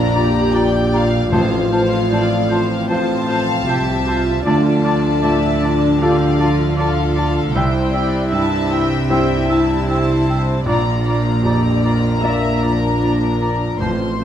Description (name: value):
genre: cinematic, emotional film score for orchestra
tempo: 77 BPM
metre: 4/4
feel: rubato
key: unclear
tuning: A4 = 440 Hz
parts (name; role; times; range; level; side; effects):
- warm symphonic violin section; melody; 0.0-14.2 s; F5 to C6; -26 LUFS; left 4 dB; none
- warm symphonic violin section; second line; 0.0-14.2 s; A4 to F5; -26 LUFS; left 3 dB; none
- clear grand piano; accompaniment; 0.0-14.2 s; A1 to D5; -23 LUFS; right 1 dB; none
- dark symphonic viola section; accompaniment; 0.0-14.2 s; D4 to E5; -24 LUFS; right 2 dB; none
- dark French horn section; sustained chords; 0.0-14.2 s; F3 to E4; -22 LUFS; left 4 dB; none
- warm symphonic cello section; bass; 0.0-14.2 s; A2 to D3; -22 LUFS; right 1 dB; none
- warm symphonic double bass section; bass; 0.0-14.2 s; A1 to D2; -22 LUFS; right 2 dB; none
- clear oboe; second line; 0.1-14.2 s; C5 to E5; -29 LUFS; right 2 dB; none
- dark clarinet; second line; 0.2-14.2 s; E4 to F4; -26 LUFS; left 2 dB; none
- mellow hollow concert flute; second line; 0.2-13.9 s; G5 to Bb5; -28 LUFS; left 1 dB; none
- timpani; percussion; 1.3-2.5, 13.8-14.2 s; A2; -26 LUFS; equal; none
room: moderate recital hall reverb, RT60 1.4 s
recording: dark, warm production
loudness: -14 LUFS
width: side -10 dB against mid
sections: 0.0-14.2 A section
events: none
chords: 0.0 Bb; 1.3 F/A; 4.5 Dm; 7.6 C; 10.7 Bb